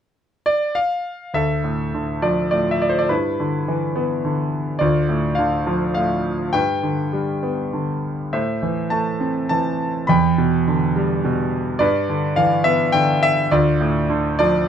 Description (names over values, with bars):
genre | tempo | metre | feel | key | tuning
classical, lyrical solo piano | 104 BPM | 3/4 | rubato | D dorian | A4 = 444 Hz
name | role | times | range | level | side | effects
bright concert grand piano | solo | 0.5-14.7 s | D2 to B5 | -17 LUFS | equal | none
room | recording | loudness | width
light reverb | close, detailed microphones | -18 LUFS | side -8 dB against mid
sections
0.0-1.3 A section; 1.3-14.7 B section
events
none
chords
0.0 N.C.; 1.3 Dm; 3.1 G6; 4.8 Dm; 6.5 G; 8.3 Am; 10.1 Em7; 11.8 G6; 13.5 Dm